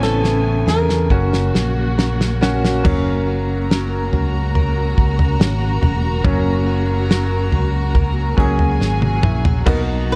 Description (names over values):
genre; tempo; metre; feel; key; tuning
pop ballad; 70 BPM; 4/4; straight; unclear; A4 = 441 Hz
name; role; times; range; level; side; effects
flamenco guitar; melody; 0.0-1.9, 8.4-10.2 s; G#4 to C#5; -26 LUFS; equal; none
bright grand piano; accompaniment; 0.0-10.2 s; A2 to A4; -26 LUFS; equal; none
warm studio string section; sustained chords; 0.0-10.2 s; B2 to G#5; -30 LUFS; equal; none
direct-recorded clean electric guitar; arpeggios; 0.0-10.2 s; F#2 to A#4; -32 LUFS; equal; none
fingered electric bass; bass; 0.0-10.2 s; E1 to E2; -22 LUFS; equal; none
damped 70s drum kit; drums; 0.0-9.9 s; crash cymbal, kick drum, snare drum, toms; -20 LUFS; equal; none
warm studio violin section; second line; 2.8-10.2 s; F#4 to A#5; -29 LUFS; equal; none
room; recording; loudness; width
small room ambience; dark, warm production; -17 LUFS; mono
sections
0.0-2.8 A section; 2.8-9.7 B section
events
drum fill 0.0-2.8, 8.8-9.7; grand piano solo 2.8-9.7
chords
0.0 Amaj7; 1.1 F#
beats
0.24 1.10 1.98 | 2.85 3.70 4.55 5.40 | 6.25 7.10 7.95 8.80 | 9.66